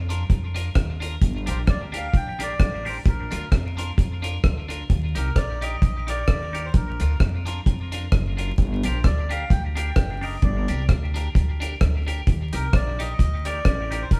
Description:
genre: ska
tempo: 130 BPM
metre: 4/4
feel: swing 57% on 8ths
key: unclear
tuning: A4 = 441 Hz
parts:
  - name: upright bass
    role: bass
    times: 0.0-14.2 s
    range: Gb1 to F2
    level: -29 LUFS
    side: equal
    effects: none
  - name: clean electric guitar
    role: accompaniment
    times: 0.1-14.0 s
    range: D4 to Bb4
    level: -36 LUFS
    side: equal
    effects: phaser, tape echo
  - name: deep reggae drum kit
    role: drums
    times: 0.1-14.2 s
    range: hi-hat, kick drum, rim click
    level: -24 LUFS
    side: equal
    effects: none
  - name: melodica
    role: melody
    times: 1.5-14.2 s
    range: Bb4 to G5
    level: -34 LUFS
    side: equal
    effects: none
room: moderate stone room reverb, RT60 1.1 s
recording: band playing live in one room, vinyl crackle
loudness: -23 LUFS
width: mono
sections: 0.0-4.9 A section; 4.9-14.2 A section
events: none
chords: 0.0 Bb; 1.2 Gm; 3.1 Bb; 4.9 Eb; 6.7 Bb; 8.6 Gm; 12.3 Eb

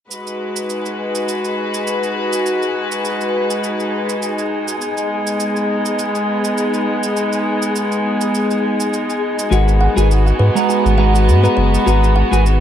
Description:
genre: sunset chillout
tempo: 102 BPM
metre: 4/4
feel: swing 55% on 16ths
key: G# minor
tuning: A4 = 440 Hz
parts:
  - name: warm studio string section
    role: sustained chords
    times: 0.1-12.6 s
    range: G#3 to B4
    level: -19 LUFS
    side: equal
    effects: none
  - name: shaker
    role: drums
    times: 0.1-12.6 s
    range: none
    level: -28 LUFS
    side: right 6 dB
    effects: none
  - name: wind-like tuned noise texture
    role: texture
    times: 0.4-12.6 s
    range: G#4 to G#5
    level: -24 LUFS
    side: left 3 dB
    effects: built-in reverb
  - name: clean electric guitar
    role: accompaniment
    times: 9.5-12.4 s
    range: G#3 to A#5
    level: -18 LUFS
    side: moving between left 5 dB and right 6 dB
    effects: auto-pan, ping-pong delay
  - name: kalimba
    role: arpeggios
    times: 9.5-12.4 s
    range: F#4 to G#5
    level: -22 LUFS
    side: left 2 dB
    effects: ping-pong delay
  - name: warm sub bass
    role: bass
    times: 9.5-12.6 s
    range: F#1 to G#2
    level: -13 LUFS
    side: equal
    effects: none
room: light reverb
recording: dark, warm production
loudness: -15 LUFS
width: side -10 dB against mid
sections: 0.1-12.6 A section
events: none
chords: 0.1 G#m7; 4.8 B6; 9.5 G#m7

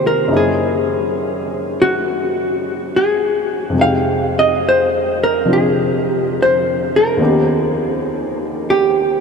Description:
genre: jazz ballad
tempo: 69 BPM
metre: 4/4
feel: swing 67% on 8ths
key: unclear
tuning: A4 = 440 Hz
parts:
  - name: hollow-body jazz guitar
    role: melody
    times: 0.0-9.2 s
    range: Gb4 to F5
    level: -15 LUFS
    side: equal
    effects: none
  - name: warm baby grand piano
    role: accompaniment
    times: 0.0-9.2 s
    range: Eb2 to G5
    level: -19 LUFS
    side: left 1 dB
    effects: none
room: wet huge ambient reverb, RT60 8.9 s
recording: in a vast, echoing space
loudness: -14 LUFS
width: side -5 dB against mid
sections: 0.0-9.2 A section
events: none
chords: 0.3 Gb13; 3.7 Fm7; 7.2 Eb7b13

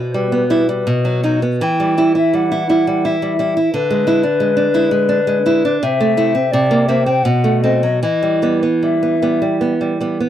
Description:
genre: romantic duo for flute and classical guitar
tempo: 74-91 BPM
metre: 3/4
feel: rubato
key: E minor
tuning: A4 = 440 Hz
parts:
  - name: nylon-string guitar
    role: accompaniment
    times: 0.0-10.3 s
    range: B2 to E4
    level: -15 LUFS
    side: right 2 dB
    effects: none
  - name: mellow hollow silver concert flute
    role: melody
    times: 0.1-9.6 s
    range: B4 to G5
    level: -18 LUFS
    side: left 6 dB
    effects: tape echo
room: light reverb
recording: dry, close 1970s-style studio recording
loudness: -13 LUFS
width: side -11 dB against mid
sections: 0.0-10.3 A section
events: none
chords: 0.0 Em/B; 0.9 B; 1.6 Em; 3.7 E7/D; 5.8 Am/C; 6.5 C9; 7.2 B7b9; 8.0 Em

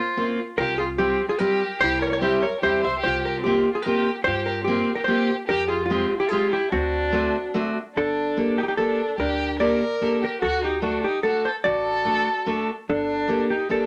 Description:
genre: musette waltz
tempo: 146 BPM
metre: 3/4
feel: straight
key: G harmonic minor from 8.0 s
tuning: A4 = 441 Hz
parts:
  - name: hollow-body jazz guitar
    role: melody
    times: 0.0-13.9 s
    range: C4 to E5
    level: -27 LUFS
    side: equal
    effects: none
  - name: rich violin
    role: second line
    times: 0.0-13.9 s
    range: C4 to C5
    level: -30 LUFS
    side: equal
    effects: none
  - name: fingerpicked steel-string acoustic guitar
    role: accompaniment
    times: 0.2-13.9 s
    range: G3 to A4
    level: -26 LUFS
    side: equal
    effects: none
  - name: upright bass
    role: bass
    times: 0.6-13.4 s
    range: G1 to G2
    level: -37 LUFS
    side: equal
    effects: none
room: moderate studio reverb, RT60 0.6 s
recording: none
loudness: -23 LUFS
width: mono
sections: 0.0-8.0 A section; 8.0-13.9 B section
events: none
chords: 0.0 Bbmadd9; 0.6 Csus4; 1.8 C; 3.0 C7sus4; 5.5 Fmadd9; 6.7 D7; 8.0 Gmadd9; 10.4 D; 12.9 Gmadd9

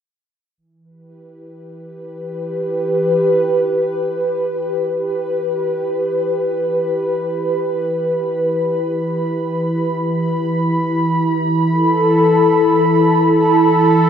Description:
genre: ambient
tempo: free time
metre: none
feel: none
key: E minor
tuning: A4 = 440 Hz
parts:
  - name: sweeping resonant pad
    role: sustained chords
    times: 0.6-14.1 s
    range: E3 to B5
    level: -15 LUFS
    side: equal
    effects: wide subtle chorus
room: wet huge ambient reverb, RT60 7.9 s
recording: worn, warbling old tape, cassette tape, warbly pitch drift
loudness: -15 LUFS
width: side -8 dB against mid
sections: 0.6-14.1 A section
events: none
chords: 0.6 Em

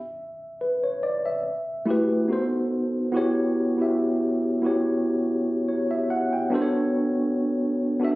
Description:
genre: R&B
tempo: 71 BPM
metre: 4/4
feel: swing 53% on 16ths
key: E dorian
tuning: A4 = 442 Hz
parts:
  - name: tine electric piano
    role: solo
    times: 0.6-8.2 s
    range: A3 to G5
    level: -22 LUFS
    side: equal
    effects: overdrive, medium stereo tremolo
room: moderate studio reverb, RT60 0.6 s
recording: recorded on a phone in the room, studio reverb, compression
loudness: -22 LUFS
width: side -19 dB against mid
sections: 0.0-3.1 A section; 3.1-8.2 B section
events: none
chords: 0.0 N.C.; 1.4 Gmaj13; 2.3 B7b9; 3.1 Em69; 6.5 Bm9

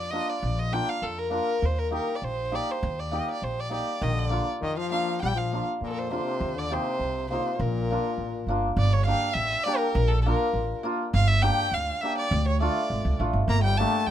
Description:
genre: klezmer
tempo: 101 BPM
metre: 2/4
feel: straight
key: Bb major, G dorian sharp4 from 8.8 s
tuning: A4 = 440 Hz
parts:
  - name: dark violin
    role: melody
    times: 0.0-14.1 s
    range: A4 to Bb5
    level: -29 LUFS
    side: equal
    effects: none
  - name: upright bass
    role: bass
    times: 0.0-14.1 s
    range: G1 to F2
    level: -26 LUFS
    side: right 1 dB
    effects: none
  - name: hammered dulcimer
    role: accompaniment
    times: 0.1-13.9 s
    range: A3 to G4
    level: -30 LUFS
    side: equal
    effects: none
  - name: brilliant trombone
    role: second line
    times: 4.0-8.5, 13.5-14.1 s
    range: Bb2 to Bb3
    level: -31 LUFS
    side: left 5 dB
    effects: none
room: light reverb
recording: close, detailed microphones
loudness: -24 LUFS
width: side -11 dB against mid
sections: 0.0-8.8 A section; 8.8-14.1 B section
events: none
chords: 0.0 Bb; 1.6 Eb; 4.0 Bb; 6.4 Eb5; 7.6 Bb; 8.8 Gm; 10.0 Bb; 11.1 Gm; 12.3 Dm; 13.5 Gm

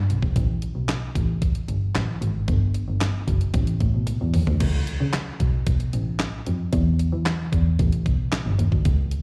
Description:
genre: early-eighties boogie funk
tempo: 113 BPM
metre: 4/4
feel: straight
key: unclear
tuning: A4 = 440 Hz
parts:
  - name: muted double bass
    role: bass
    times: 0.0-9.0 s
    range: F#1 to E3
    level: -25 LUFS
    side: equal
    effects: none
  - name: detuned 8-bit digital drum machine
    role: drums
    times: 0.1-9.2 s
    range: crash cymbal, handclaps, hi-hat, kick drum, snare drum, toms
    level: -27 LUFS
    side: equal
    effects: none
room: little or no reverb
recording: live gig heard through the venue's PA, recital hall reverb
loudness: -23 LUFS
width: mono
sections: 0.0-4.6 A section; 4.6-9.2 B section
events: drum fill 4.1-4.6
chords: none

